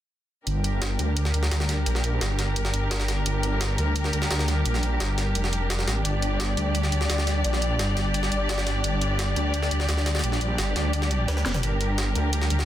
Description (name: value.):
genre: dark technical drum and bass.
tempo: 172 BPM.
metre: 4/4.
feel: straight.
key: G minor.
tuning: A4 = 441 Hz.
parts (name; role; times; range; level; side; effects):
dark studio string section; sustained chords; 0.5-12.7 s; G3 to D5; -28 LUFS; left 1 dB; none.
wide detuned saw bass; bass; 0.5-12.7 s; F1 to D2; -25 LUFS; equal; chorus.
drum and bass drum kit; drums; 0.5-12.6 s; hi-hat, snare drum, toms; -32 LUFS; right 1 dB; studio ambience.
jungle sampler-style drum kit; drums; 0.5-12.7 s; hi-hat, snare drum; -32 LUFS; equal; high-pass filter on hats, studio ambience, high-pass filter on snare.
room: light reverb.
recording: dense, heavily limited modern master.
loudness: -22 LUFS.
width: side -12 dB against mid.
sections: 0.5-12.7 A section.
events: drum fill 11.5.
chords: 0.5 Gm.